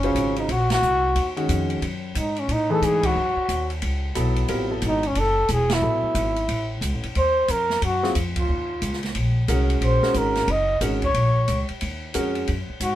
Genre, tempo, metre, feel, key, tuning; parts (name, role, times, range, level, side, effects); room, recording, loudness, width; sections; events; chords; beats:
modal jazz; 180 BPM; 4/4; swing 63% on 8ths; Eb dorian; A4 = 440 Hz
breathy trumpet; melody; 0.0-13.0 s; Db4 to Eb5; -22 LUFS; equal
warm concert grand piano; accompaniment; 0.0-12.5 s; Db3 to C5; -25 LUFS; equal
upright bass; bass; 0.0-13.0 s; Fb1 to A2; -24 LUFS; equal
open jazz drum kit; drums; 0.0-12.9 s; hi-hat, kick drum, ride cymbal, snare drum; -30 LUFS; right 1 dB
light reverb; band playing live in one room; -20 LUFS; side -13 dB against mid
0.0-13.0 A section
band accent 0.7, 3.0, 5.7, 8.3
0.0 Ebm9; 1.8 Gbm9; 7.2 Ebm9
0.16 | 0.49 0.82 1.16 1.49 | 1.82 2.16 2.49 2.82 | 3.15 3.49 3.82 4.15 | 4.49 4.82 5.15 5.49 | 5.82 6.15 6.48 6.82 | 7.15 7.48 7.82 8.15 | 8.48 8.81 9.15 9.48 | 9.81 10.14 10.48 10.81 | 11.14 11.47 11.81 12.14 | 12.47 12.80